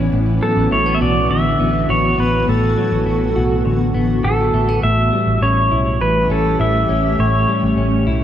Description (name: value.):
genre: dream pop.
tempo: 102 BPM.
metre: 4/4.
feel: straight.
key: unclear.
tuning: A4 = 439 Hz.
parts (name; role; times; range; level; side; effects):
granular cloud pad; sustained chords; 0.0-8.2 s; E3 to G4; -21 LUFS; equal; built-in reverb.
semi-hollow electric guitar; arpeggios; 0.0-8.2 s; A2 to F#4; -20 LUFS; left 1 dB; analog chorus, tape echo.
vintage muted fingered electric bass; bass; 0.0-8.2 s; A1 to B1; -20 LUFS; equal; none.
pedal steel guitar; melody; 0.4-8.2 s; A4 to E5; -18 LUFS; equal; tape echo.
room: moderate lush hall reverb, RT60 2.5 s.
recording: none.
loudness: -14 LUFS.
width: side -10 dB against mid.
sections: 0.0-8.2 A section.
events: none.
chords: 0.1 Bm11/A; 4.8 A7.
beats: | 0.12 0.71 1.30 1.89 | 2.47 3.06 3.65 4.24 | 4.83 5.41 6.00 6.59 | 7.18 7.77.